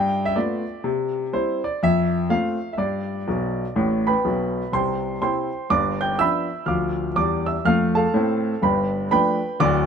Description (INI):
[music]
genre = jazz, stride piano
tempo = 123 BPM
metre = 4/4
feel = swing 62% on 8ths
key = unclear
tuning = A4 = 440 Hz
[part]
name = clear grand piano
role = solo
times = 0.0-9.9 s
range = D1 to G6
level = -20 LUFS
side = equal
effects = none
[sound]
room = light reverb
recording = minimal, uncompressed stereo recording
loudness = -20 LUFS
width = side -7 dB against mid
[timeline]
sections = 0.0-4.7 A section; 4.7-9.9 B section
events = grand piano fill 3.3-4.7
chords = 0.0 G9; 0.8 C; 1.8 Fmaj7; 2.8 G; 4.7 C; 5.7 G7; 6.7 G5/D; 8.6 G9